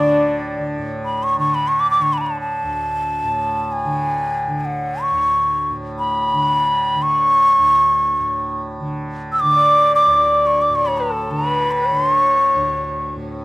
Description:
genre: indian classical, Hindustani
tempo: free time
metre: none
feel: none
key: D raga yaman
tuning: A4 = 440 Hz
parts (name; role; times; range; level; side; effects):
- breathy bansuri; melody; 0.0-13.1 s; D5 to E6; -16 LUFS; equal; slapback echo
- dark sarangi; second line; 0.0-0.8, 9.5-13.3 s; D4 to D5; -21 LUFS; left 2 dB; slapback echo
- tanpura; drone; 0.0-13.4 s; D2 to D3; -26 LUFS; right 1 dB; none
room: little or no reverb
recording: recorded outdoors, with no room sound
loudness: -15 LUFS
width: side -21 dB against mid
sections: 0.8-13.4 A section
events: none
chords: none

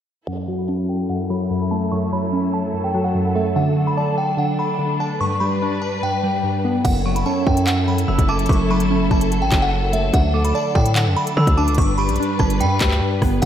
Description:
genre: hip hop, drill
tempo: 146 BPM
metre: 4/4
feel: half-time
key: F# phrygian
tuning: A4 = 438 Hz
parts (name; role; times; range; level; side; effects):
- delicate synth tine bell; melody; 0.3-13.5 s; E5 to C#6; -24 LUFS; equal; chorus, phaser, low-pass filter, tape echo
- glassy digital keys; accompaniment; 0.3-13.5 s; F#2 to D5; -21 LUFS; equal; chorus, phaser, low-pass filter
- warm symphonic string section; sustained chords; 0.3-13.5 s; F#3 to B4; -26 LUFS; left 2 dB; low-pass filter
- distorted 808-style bass; bass; 6.8-13.5 s; F#1 to D3; -20 LUFS; equal; distortion
- drill drum kit; drums; 6.8-13.5 s; crash cymbal, handclaps, hi-hat, kick drum, rim click; -21 LUFS; equal; none
- dark detuned synth bell; second line; 7.1-13.0 s; B5 to E6; -29 LUFS; right 2 dB; chorus, tremolo, tape echo
room: wet lush hall reverb, RT60 1.6 s, digital ambience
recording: dreamy mix soaked in reverb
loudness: -17 LUFS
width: side -10 dB against mid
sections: 0.3-6.8 A section; 6.8-13.5 B section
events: filter sweep 0.3-6.8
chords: 0.3 F#m7; 3.6 D; 5.2 G; 6.8 F#m7; 10.1 D; 11.8 G

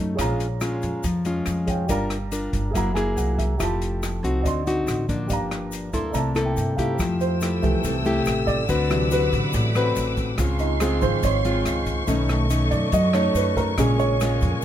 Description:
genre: bossa nova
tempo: 141 BPM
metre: 4/4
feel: straight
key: unclear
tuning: A4 = 441 Hz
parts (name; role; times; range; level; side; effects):
- nylon-string guitar; accompaniment; 0.0-14.6 s; G2 to B4; -24 LUFS; left 2 dB; none
- warm baby grand piano; accompaniment; 0.0-14.6 s; C3 to C6; -27 LUFS; right 3 dB; none
- upright bass; bass; 0.0-14.5 s; F1 to G2; -26 LUFS; right 1 dB; none
- open jazz drum kit; drums; 0.2-14.5 s; hi-hat, kick drum, rim click; -30 LUFS; equal; none
- egg shaker; percussion; 0.2-14.6 s; none; -42 LUFS; left 5 dB; none
- warm symphonic string section; sustained chords; 7.0-14.6 s; A4 to E6; -30 LUFS; left 1 dB; none
room: light reverb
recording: close, detailed microphones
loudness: -20 LUFS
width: side -11 dB against mid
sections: 0.0-7.0 A section; 7.0-14.6 B section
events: grand piano fill 2.7-3.6, 5.7-7.0; grand piano solo 7.0-14.6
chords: 0.2 Bbm7; 1.9 Gm7; 2.7 Gb9; 3.6 Fmaj9; 4.4 D7b9; 5.3 Gm7; 6.1 C13; 7.0 Fmaj9; 8.7 D13; 10.4 Dbmaj7; 12.1 B9; 13.8 Bbm7

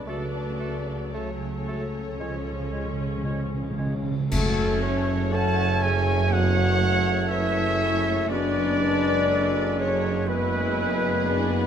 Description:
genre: classical, slow romantic movement for symphony orchestra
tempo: 55-62 BPM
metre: 4/4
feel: rubato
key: F# minor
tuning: A4 = 435 Hz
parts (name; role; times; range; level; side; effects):
- muted symphonic violin section; melody; 0.0-11.7 s; F#4 to F#5; -36 LUFS; left 6 dB; none
- muted studio violin section; second line; 0.0-11.7 s; C#4 to A5; -36 LUFS; left 3 dB; none
- muted symphonic viola section; accompaniment; 0.0-11.7 s; E#3 to E4; -34 LUFS; right 1 dB; none
- mellow French horn section; sustained chords; 0.0-11.7 s; E#3 to A4; -30 LUFS; left 6 dB; none
- mellow trumpet; stabs; 0.0-11.7 s; A4 to A5; -30 LUFS; right 2 dB; none
- muted studio cello section; bass; 0.0-11.7 s; F#2 to C#3; -30 LUFS; right 3 dB; none
- muted symphonic double bass section; bass; 0.0-11.7 s; F#1 to C#2; -31 LUFS; right 3 dB; none
- clear oboe; second line; 0.1-11.7 s; A4 to C#5; -36 LUFS; right 1 dB; none
- hollow concert flute; second line; 0.1-11.7 s; A4 to A5; -34 LUFS; left 3 dB; none
- mellow clarinet; second line; 0.1-11.7 s; E4 to C#5; -36 LUFS; left 2 dB; none
- warm bassoon; accompaniment; 0.1-11.7 s; G#3 to A3; -36 LUFS; right 2 dB; none
- cymbal swell, clash cymbals and concert bass drum; percussion; 0.1-6.3 s; none; -30 LUFS; left 1 dB; none
- timpani; percussion; 2.2-4.3 s; C#3; -30 LUFS; right 1 dB; none
- warm tuba; bass; 4.3-11.7 s; F#1; -32 LUFS; right 5 dB; none
room: moderate scoring stage reverb, RT60 1.9 s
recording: none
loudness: -22 LUFS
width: side -8 dB against mid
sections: 0.0-4.3 A section; 4.3-11.7 B section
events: timpani fill 2.2-4.3; band accent 4.3-5.3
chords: 0.1 F#m/C#; 2.2 C#; 4.3 F#m; 8.3 G#m7b5/F#

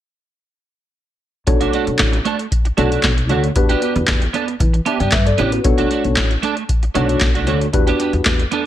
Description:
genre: early-eighties boogie funk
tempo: 115 BPM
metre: 4/4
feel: straight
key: B minor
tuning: A4 = 438 Hz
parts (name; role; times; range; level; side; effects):
- tine electric piano; accompaniment; 1.5-8.4 s; D4 to A5; -20 LUFS; left 3 dB; lush chorus
- clean electric guitar; riff; 1.5-8.7 s; A3 to A4; -21 LUFS; right 7 dB; ensemble chorus
- upright bass; bass; 1.5-8.4 s; A1 to E3; -20 LUFS; equal; none
- booming analog drum machine; drums; 1.5-8.6 s; handclaps, hi-hat, kick drum, snare drum; -17 LUFS; equal; gated reverb
room: little or no reverb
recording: none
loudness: -14 LUFS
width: side -12 dB against mid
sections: 1.5-8.7 A section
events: none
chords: 1.5 Bm7; 3.6 Em7; 5.6 Bm7; 7.7 Em7

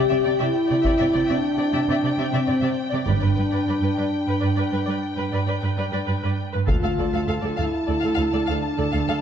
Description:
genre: cinematic, epic orchestral film score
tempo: 67 BPM (dotted quarters)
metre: 12/8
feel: straight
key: unclear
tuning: A4 = 439 Hz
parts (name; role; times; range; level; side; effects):
- warm symphonic violin section; melody; 0.0-9.2 s; G5 to A5; -34 LUFS; left 3 dB; none
- clear symphonic viola section; accompaniment; 0.0-9.1 s; A4 to D5; -31 LUFS; equal; none
- mellow French horn section; sustained chords; 0.0-9.2 s; C4 to G4; -23 LUFS; left 1 dB; none
- rich symphonic cello section; bass; 0.0-9.1 s; D2 to C3; -25 LUFS; right 3 dB; none
- warm symphonic violin section; second line; 0.1-9.1 s; B4 to F5; -31 LUFS; left 3 dB; none
- taiko ensemble; drums; 0.8-1.1, 6.7-7.8 s; none; -26 LUFS; equal; none
- rich studio double bass section; bass; 3.1-6.8 s; G1 to D2; -27 LUFS; right 4 dB; none
room: wet concert hall reverb, RT60 1.9 s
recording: dark, warm production, nothing above 8.0 kHz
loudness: -20 LUFS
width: side -8 dB against mid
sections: 0.0-9.2 A section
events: none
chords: 0.0 Cadd9; 3.1 G; 6.7 Dm

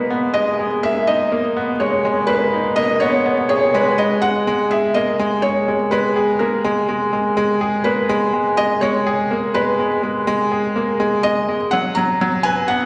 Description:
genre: electronica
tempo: 124 BPM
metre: 4/4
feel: straight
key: unclear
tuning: A4 = 440 Hz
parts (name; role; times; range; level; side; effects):
- felt-muted upright piano; melody; 0.0-12.9 s; A#4 to A#5; -22 LUFS; equal; low-pass filter, delay
- bright upright piano; riff; 0.0-12.9 s; F#3 to B4; -20 LUFS; equal; delay
room: wet recital hall reverb, RT60 1.4 s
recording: none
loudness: -18 LUFS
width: mono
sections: 0.0-4.0 A section; 4.0-12.9 B section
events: build-up 0.0-4.0; drop 4.0-12.9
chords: 0.0 G#madd9; 11.7 B5

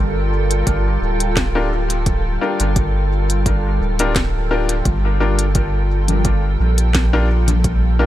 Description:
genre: ambient dub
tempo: 86 BPM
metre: 4/4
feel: swing 53% on 16ths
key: G minor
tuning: A4 = 441 Hz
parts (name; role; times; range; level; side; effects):
- soft additive organ-like pad; sustained chords; 0.0-8.1 s; G3 to G5; -23 LUFS; equal; ensemble chorus, built-in reverb
- soft dub sub bass; bass; 0.0-8.1 s; D1 to Bb1; -17 LUFS; equal; none
- organic electronic drum kit; drums; 0.5-7.8 s; congas, hi-hat, snare drum; -24 LUFS; left 2 dB; dub echo
- electronic kick drum; drums; 0.7-7.8 s; none; -21 LUFS; equal; overdrive
- bright upright piano; stabs; 1.6-8.1 s; D4 to Bb4; -24 LUFS; left 3 dB; vintage 12-bit sampler grit, low-pass filter, dub echo
room: little or no reverb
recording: none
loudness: -15 LUFS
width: side -13 dB against mid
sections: 0.0-8.1 A section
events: none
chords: 0.0 Gm7

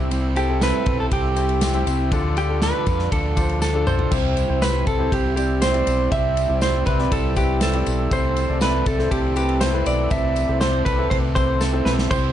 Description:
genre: piano-driven pop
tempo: 120 BPM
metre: 4/4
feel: straight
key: C major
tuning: A4 = 440 Hz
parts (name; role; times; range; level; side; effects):
- warm concert grand piano; accompaniment; 0.0-12.3 s; C3 to D5; -26 LUFS; left 4 dB; none
- warm analog pad; sustained chords; 0.0-12.3 s; C4 to E6; -35 LUFS; right 2 dB; none
- overdriven semi-hollow guitar; riff; 0.0-12.3 s; C3 to C5; -29 LUFS; right 8 dB; none
- fingered electric bass; bass; 0.0-12.3 s; B1 to F2; -23 LUFS; equal; none
- natural country drum kit; drums; 0.1-12.2 s; crash cymbal, kick drum, ride cymbal, snare drum, toms; -25 LUFS; equal; none
- tambourine; percussion; 0.1-12.2 s; none; -39 LUFS; left 7 dB; none
- direct-recorded clean electric guitar; melody; 0.4-12.3 s; G4 to E5; -24 LUFS; right 1 dB; lush chorus
room: light reverb, studio ambience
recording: dark, warm production, nothing above 10.4 kHz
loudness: -18 LUFS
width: side -11 dB against mid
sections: 0.0-4.1 A section; 4.1-12.3 B section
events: drum fill 3.6-4.1, 11.6-12.1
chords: 0.0 C; 2.1 Dm; 4.1 C; 8.1 Am

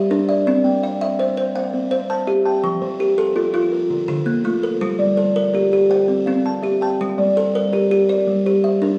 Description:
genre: southern african traditional, mbira-style interlocking cycle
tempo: 110 BPM (dotted quarters)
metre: 12/8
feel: straight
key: G dorian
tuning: A4 = 441 Hz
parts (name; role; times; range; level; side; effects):
- buzzing kalimba; arpeggios; 0.0-9.0 s; D3 to G5; -23 LUFS; equal; none
- kalimba; arpeggios; 0.0-9.0 s; D3 to A5; -21 LUFS; equal; slapback echo
room: wet recital hall reverb, RT60 1.5 s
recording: worn, warbling old tape, cassette tape, warbly pitch drift, small room reverb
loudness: -19 LUFS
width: mono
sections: 0.0-9.0 A section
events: none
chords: 0.5 C; 2.6 F; 3.7 Dm; 4.8 Gm; 5.9 C; 7.0 Gm

